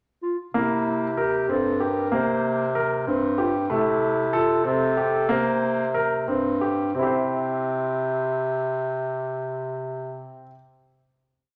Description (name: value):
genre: contemporary instrumental, chamber music in an uneven meter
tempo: 176-190 BPM (eighths)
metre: 5/8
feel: straight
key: C mixolydian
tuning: A4 = 439 Hz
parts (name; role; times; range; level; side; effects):
- dark clarinet; melody; 0.2-6.3 s; E4 to C5; -29 LUFS; equal; none
- warm grand piano; arpeggios; 0.5-10.6 s; A3 to C5; -28 LUFS; equal; none
- warm bass clarinet; bass; 0.5-10.4 s; G2 to C3; -28 LUFS; equal; none
room: moderate recital hall reverb, RT60 1.6 s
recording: none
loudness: -24 LUFS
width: mono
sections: 0.0-0.5 pickup bar; 0.5-7.0 A section; 7.0-10.4 final chord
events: slowing down 3.7-7.0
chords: 0.0 N.C.; 0.5 C7; 3.7 C6; 5.3 C5; 7.0 C